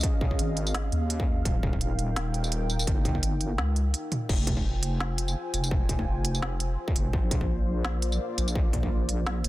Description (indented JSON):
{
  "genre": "half-time drum and bass",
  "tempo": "169 BPM",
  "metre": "4/4",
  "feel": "swing 55% on 16ths, half-time",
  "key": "F minor",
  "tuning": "A4 = 441 Hz",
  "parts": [
    { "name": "dark analog pad", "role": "sustained chords", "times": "0.0-9.5 s", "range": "Bb3 to Ab5", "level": "-35 LUFS", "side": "equal", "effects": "chorus, vintage 12-bit sampler grit, sidechain pumping" },
    { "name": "deep soft wobble bass", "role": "bass", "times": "0.0-9.5 s", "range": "Eb1 to Eb2", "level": "-28 LUFS", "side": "equal", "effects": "chorus" },
    { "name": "electronic kick drum", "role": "drums", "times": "0.0-8.9 s", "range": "none", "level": "-27 LUFS", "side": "equal", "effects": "distortion, small room reverb" },
    { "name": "organic electronic drum kit", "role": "drums", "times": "0.0-9.5 s", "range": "crash cymbal, hi-hat, snare drum, tambourine, toms", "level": "-32 LUFS", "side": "right 1 dB", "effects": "small room reverb" }
  ],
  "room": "little or no reverb",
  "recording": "dense, heavily limited modern master",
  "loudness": "-25 LUFS",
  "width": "side -17 dB against mid",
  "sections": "0.0-4.3 A section; 4.3-9.5 A section",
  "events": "drop 0.0-4.3, 4.3-9.5; break 3.9-4.3",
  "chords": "0.0 Db; 1.5 Eb; 4.3 Fm; 7.1 Bb",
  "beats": "| 0.03 0.39 0.74 1.10 | 1.45 1.81 2.16 2.52 | 2.87 3.23 3.58 3.94 | 4.29 4.65 5.00 5.36 | 5.71 6.07 6.42 6.78 | 7.13 7.49 7.84 8.20 | 8.55 8.91 9.27"
}